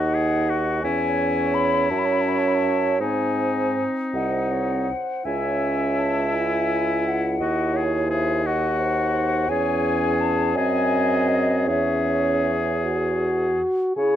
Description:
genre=classical, slow romantic movement for wind quintet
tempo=51-59 BPM (dotted quarters)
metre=6/8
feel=rubato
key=C# minor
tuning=A4 = 442 Hz
part: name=hollow concert flute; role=melody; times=0.0-14.2 s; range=D#5 to B5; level=-27 LUFS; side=left 8 dB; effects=none
part: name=bright oboe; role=second line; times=0.0-14.2 s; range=D#4 to C#5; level=-28 LUFS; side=left 3 dB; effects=none
part: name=clear French horn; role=accompaniment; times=0.0-14.2 s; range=B#3 to G#4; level=-25 LUFS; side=equal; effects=none
part: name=warm clarinet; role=accompaniment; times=0.0-14.2 s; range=E4 to E5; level=-29 LUFS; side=right 7 dB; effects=none
part: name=mellow bassoon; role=bass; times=0.0-14.2 s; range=B#1 to C#3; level=-25 LUFS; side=right 2 dB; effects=none
room=light reverb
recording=dark, warm production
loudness=-20 LUFS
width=side -11 dB against mid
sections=0.0-14.0 A section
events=none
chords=0.0 G#7(no3)/D#; 0.8 C#m/E; 1.9 F#5; 3.0 G#; 5.3 C#m; 7.4 G#5/D#; 9.5 C#m/E; 10.6 G#7/F#; 11.7 C#m/E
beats=| 0.84 1.90 | 3.00 4.14 | 5.25 6.34 | 7.40 8.45 | 9.50 10.56 | 11.67 12.84 | 13.97

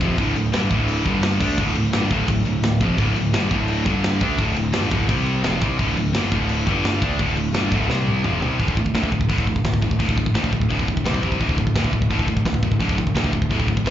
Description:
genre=heavy metal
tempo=171 BPM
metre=4/4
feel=straight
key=D minor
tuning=A4 = 435 Hz
part: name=high-gain distorted guitar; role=riff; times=0.0-13.9 s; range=D2 to D4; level=-24 LUFS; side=left 7 dB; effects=distortion
part: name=high-gain distorted guitar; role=riff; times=0.0-13.9 s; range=D2 to D4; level=-26 LUFS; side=right 8 dB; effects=distortion, slapback echo
part: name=fuzz picked electric bass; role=bass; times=0.0-13.9 s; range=D1 to D2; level=-23 LUFS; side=equal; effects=overdrive
part: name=tight metal drum kit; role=drums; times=0.0-13.9 s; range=crash cymbal, hi-hat, kick drum, snare drum, toms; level=-24 LUFS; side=equal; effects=none
room=little or no reverb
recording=live gig heard through the venue's PA, club reverb, nothing above 7.5 kHz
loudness=-18 LUFS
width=side -11 dB against mid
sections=0.0-8.6 A section; 8.6-13.9 B section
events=drum fill 7.9-8.6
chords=0.0 Dm; 1.1 G5; 1.4 Dm; 3.9 G5; 4.2 D5; 5.1 C5; 5.4 Dm; 6.7 G5; 7.0 D5; 7.9 C5; 8.2 Fsus2; 8.6 D5; 11.0 C5; 11.4 D5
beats=| 0.18 0.53 0.88 1.23 | 1.58 1.94 2.29 2.64 | 2.99 3.34 3.69 4.04 | 4.39 4.74 5.09 5.44 | 5.79 6.14 6.49 6.84 | 7.19 7.54 7.89 8.24 | 8.59 8.94 9.29 9.64 | 10.00 10.35 10.70 11.05 | 11.40 11.75 12.10 12.45 | 12.80 13.15 13.51 13.86

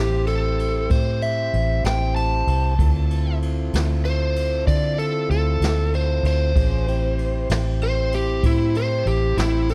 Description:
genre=slow blues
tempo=64 BPM (dotted quarters)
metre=12/8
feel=straight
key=A minor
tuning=A4 = 440 Hz
part: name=overdriven slide guitar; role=second line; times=0.0-9.7 s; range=E4 to A5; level=-27 LUFS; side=equal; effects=none
part: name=tonewheel organ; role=sustained chords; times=0.0-9.7 s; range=C4 to C5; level=-32 LUFS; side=equal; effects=slow rotary speaker
part: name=vintage muted fingered electric bass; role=bass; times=0.0-9.7 s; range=A1 to D3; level=-24 LUFS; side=equal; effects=none
part: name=jazz brush drum kit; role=drums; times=0.3-9.7 s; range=kick drum, ride cymbal, snare drum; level=-28 LUFS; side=equal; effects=none
room=small room reverb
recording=dark, warm production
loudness=-21 LUFS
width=mono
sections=0.0-9.7 A section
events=electric slide guitar solo 0.0-9.7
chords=0.0 Am7; 2.8 Dm9; 6.6 Am7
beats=0.90 1.84 | 2.78 3.73 4.67 5.61 | 6.55 7.49 8.43 9.38

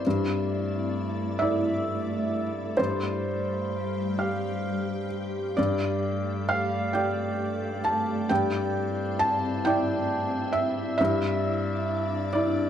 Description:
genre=neoclassical piano and strings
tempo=44 BPM (dotted quarters)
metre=6/8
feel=rubato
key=unclear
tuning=A4 = 439 Hz
part: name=felt-muted upright piano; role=accompaniment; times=0.0-12.7 s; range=G2 to A5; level=-26 LUFS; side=equal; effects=none
part: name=soft additive organ-like pad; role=sustained chords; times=0.0-12.7 s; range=G3 to F5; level=-32 LUFS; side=left 1 dB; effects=ensemble chorus, built-in reverb
room=moderate large studio reverb, RT60 0.9 s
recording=none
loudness=-25 LUFS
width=side -9 dB against mid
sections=0.0-12.7 A section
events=none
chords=0.1 Dsus2/G; 2.8 Fsus2/G; 5.6 Gsus2; 8.3 Cadd9/G; 11.0 Dsus2/G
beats=| 0.05 1.40 | 2.78 4.18 | 5.58 6.94 | 8.30 9.65 | 10.99 12.34

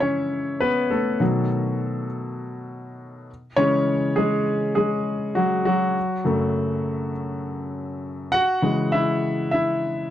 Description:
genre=pop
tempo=101 BPM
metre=4/4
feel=straight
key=C# minor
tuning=A4 = 441 Hz
part: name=clear baby grand piano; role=solo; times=0.0-10.1 s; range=F#2 to F#5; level=-21 LUFS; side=left 1 dB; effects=none
room=light reverb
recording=dry, close 1970s-style studio recording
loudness=-20 LUFS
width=side -11 dB against mid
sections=0.0-10.1 A section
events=grand piano solo 0.0-10.1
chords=0.0 C#m; 1.2 B; 3.3 C#m; 6.0 F#m; 8.3 C#m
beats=0.02 0.61 | 1.21 1.80 2.40 2.99 | 3.58 4.18 4.77 5.37 | 5.96 6.56 7.15 7.75 | 8.34 8.93 9.53

